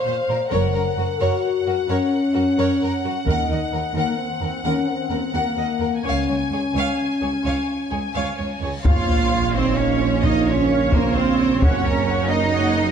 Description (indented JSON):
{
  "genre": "cinematic, epic orchestral film score",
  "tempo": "87 BPM (dotted quarters)",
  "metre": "12/8",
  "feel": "straight",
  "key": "Bb minor",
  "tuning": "A4 = 440 Hz",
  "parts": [
    { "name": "clear symphonic violin section", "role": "melody", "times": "0.0-12.9 s", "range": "Bb4 to Ab5", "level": "-29 LUFS", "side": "left 5 dB", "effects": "none" },
    { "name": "rich chamber violin section", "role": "second line", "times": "0.0-12.9 s", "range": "Gb4 to Gb5", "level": "-29 LUFS", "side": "left 1 dB", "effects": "none" },
    { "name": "dark symphonic viola section", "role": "accompaniment", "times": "0.0-12.9 s", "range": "Bb4 to Bb5", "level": "-29 LUFS", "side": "right 1 dB", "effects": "none" },
    { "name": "warm French horn section", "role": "sustained chords", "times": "0.0-12.9 s", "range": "Db3 to C5", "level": "-24 LUFS", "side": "left 4 dB", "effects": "none" },
    { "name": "rich symphonic cello section", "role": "bass", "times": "0.1-12.9 s", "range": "Db2 to F4", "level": "-24 LUFS", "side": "right 3 dB", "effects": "none" },
    { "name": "rich symphonic double bass section", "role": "bass", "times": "0.5-12.9 s", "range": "Gb1 to Gb2", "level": "-25 LUFS", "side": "right 5 dB", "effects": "none" },
    { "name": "taiko ensemble", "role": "drums", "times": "3.3-4.1, 8.8-12.0 s", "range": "none", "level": "-21 LUFS", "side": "equal", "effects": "none" },
    { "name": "reverse cymbal and sub drop", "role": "sound effects", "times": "8.6-11.6 s", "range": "none", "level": "-29 LUFS", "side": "equal", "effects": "none" },
    { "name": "dark trombone section", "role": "sustained chords", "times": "8.8-12.9 s", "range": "F3 to Bb3", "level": "-28 LUFS", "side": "right 5 dB", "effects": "none" },
    { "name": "mellow tuba", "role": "bass", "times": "8.9-12.9 s", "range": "Gb1 to Bb1", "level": "-27 LUFS", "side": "right 4 dB", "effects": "none" }
  ],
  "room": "wet recital hall reverb, RT60 1.7 s",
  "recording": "dark, warm production",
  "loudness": "-18 LUFS",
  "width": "side -8 dB against mid",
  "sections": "0.0-8.9 A section; 8.9-12.9 A section",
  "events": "reverse cymbal 8.6; impact 8.9-11.6",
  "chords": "0.0 Bbsus2; 0.5 Gb; 3.3 Ebm; 6.0 Db; 8.9 Bbmadd9; 11.6 Gb",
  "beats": "| 0.53 1.21 1.90 2.58 | 3.27 3.95 4.64 5.34 | 6.04 6.75 7.46 8.16 | 8.86 9.55 10.24 10.93 | 11.62 12.31"
}